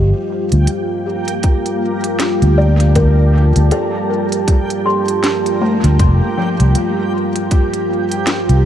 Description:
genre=ambient dub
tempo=79 BPM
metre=4/4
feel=swing 59% on 16ths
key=G minor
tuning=A4 = 441 Hz
part: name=deep dark ambient pad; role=sustained chords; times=0.0-8.7 s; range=G3 to A5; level=-18 LUFS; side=right 1 dB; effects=chorus, built-in reverb
part: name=buzzing kalimba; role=arpeggios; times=0.0-8.7 s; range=F3 to C6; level=-22 LUFS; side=left 2 dB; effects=low-pass filter, tape echo
part: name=fingered electric bass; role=bass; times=0.0-8.7 s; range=F1 to D2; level=-11 LUFS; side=equal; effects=none
part: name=backwards swelling texture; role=texture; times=0.5-8.7 s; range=Bb3 to G4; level=-24 LUFS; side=right 1 dB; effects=built-in reverb
part: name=organic electronic drum kit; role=drums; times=0.5-8.6 s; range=hi-hat, snare drum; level=-23 LUFS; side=equal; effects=dub echo
part: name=electronic kick drum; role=drums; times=1.4-7.7 s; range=none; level=-14 LUFS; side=equal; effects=none
room=light reverb, digital ambience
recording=none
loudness=-12 LUFS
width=side -10 dB against mid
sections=0.0-8.7 A section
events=filter sweep on kalimba 0.0-8.7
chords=0.0 Gm9; 6.0 Fsus4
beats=0.68 1.44 2.20 | 2.96 3.72 4.48 5.24 | 6.00 6.76 7.51 8.28

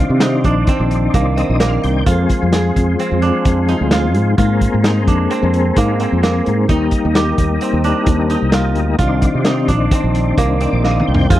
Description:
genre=progressive instrumental, band music in an uneven meter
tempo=130 BPM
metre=5/4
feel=straight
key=unclear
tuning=A4 = 442 Hz
part: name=tonewheel organ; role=accompaniment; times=0.0-11.4 s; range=Eb3 to G5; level=-19 LUFS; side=left 4 dB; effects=chorus vibrato, fast rotary speaker
part: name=kora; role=arpeggios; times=0.0-11.4 s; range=Bb3 to Ab4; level=-21 LUFS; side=right 7 dB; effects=none
part: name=fretless electric bass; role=bass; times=0.0-11.4 s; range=Bb1 to C3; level=-16 LUFS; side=equal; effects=ensemble chorus
part: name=vintage drum kit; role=drums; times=0.2-11.4 s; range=hi-hat, kick drum, snare drum, toms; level=-17 LUFS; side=equal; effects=none
room=little or no reverb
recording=dry, close 1970s-style studio recording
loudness=-13 LUFS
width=side -14 dB against mid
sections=0.0-11.3 A section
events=tonewheel organ fill 1.1-2.1, 10.4-11.3; drum fill 10.8-11.3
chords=0.0 Cmadd9; 2.1 Fm; 4.4 Abadd9; 6.7 Eb; 9.0 Cmadd9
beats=0.22 0.68 1.15 1.61 | 2.07 2.54 3.00 3.46 3.92 | 4.39 4.85 5.31 5.77 6.24 | 6.70 7.16 7.62 8.08 8.54 | 9.00 9.46 9.93 10.39 10.85 | 11.31

